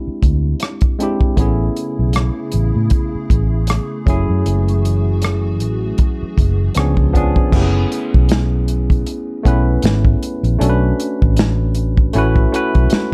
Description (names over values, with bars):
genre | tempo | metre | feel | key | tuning
R&B, neo-soul | 78 BPM | 4/4 | swing 57% on 16ths | F# minor | A4 = 440 Hz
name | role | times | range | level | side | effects
tine electric piano | accompaniment | 0.0-13.1 s | E#3 to B4 | -23 LUFS | equal | none
vintage muted fingered electric bass | bass | 0.1-12.9 s | F#1 to A2 | -19 LUFS | equal | none
warm soul drum kit | drums | 0.2-13.1 s | crash cymbal, hi-hat, kick drum, rim click, snare drum | -18 LUFS | equal | none
hollow soft pad | sustained chords | 1.7-7.5 s | C#3 to G#4 | -31 LUFS | equal | ensemble chorus
room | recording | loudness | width
little or no reverb | none | -16 LUFS | mono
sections
0.0-7.5 A section; 7.5-13.1 B section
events
none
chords
0.0 E7alt; 1.4 Amaj7; 4.1 F#m9; 6.8 C#7b9; 7.5 F#m11 (rootless); 10.6 Bm9; 12.1 A6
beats
0.60 | 1.37 2.14 2.91 3.68 | 4.45 5.22 5.99 6.76 | 7.53 8.29 9.06 9.83 | 10.60 11.37 12.14 12.91